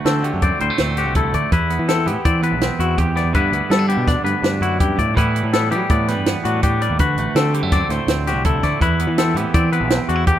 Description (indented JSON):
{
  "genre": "math rock and midwest emo",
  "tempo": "164 BPM",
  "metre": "5/4",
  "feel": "straight",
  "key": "unclear",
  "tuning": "A4 = 439 Hz",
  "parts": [
    { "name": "twangy electric guitar", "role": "accompaniment", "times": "0.0-10.4 s", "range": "D2 to G4", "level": "-23 LUFS", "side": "right 7 dB", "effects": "none" },
    { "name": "twangy electric guitar", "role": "arpeggios", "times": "0.0-10.4 s", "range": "F#4 to D5", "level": "-22 LUFS", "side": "left 8 dB", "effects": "none" },
    { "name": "growling picked electric bass", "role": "bass", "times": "0.1-10.4 s", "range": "A1 to G3", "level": "-21 LUFS", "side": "equal", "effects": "overdrive" },
    { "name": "compact cocktail drum kit", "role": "drums", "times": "0.1-10.4 s", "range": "hi-hat, kick drum, snare drum", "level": "-20 LUFS", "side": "right 1 dB", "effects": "none" }
  ],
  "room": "light reverb, studio reverb",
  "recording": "rough home demo mix",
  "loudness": "-16 LUFS",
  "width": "side -11 dB against mid",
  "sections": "0.0-10.4 A section",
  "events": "none",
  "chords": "0.0 D7; 1.5 Cmaj7/E; 3.3 G6; 5.2 Asus2; 7.0 D7; 8.8 Cmaj7/E",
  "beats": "0.06 0.42 0.79 1.15 | 1.52 1.88 2.25 2.61 2.98 | 3.34 3.71 4.07 4.44 4.80 | 5.17 5.53 5.90 6.26 6.62 | 6.99 7.36 7.72 8.08 8.45 | 8.81 9.18 9.54 9.91 10.27"
}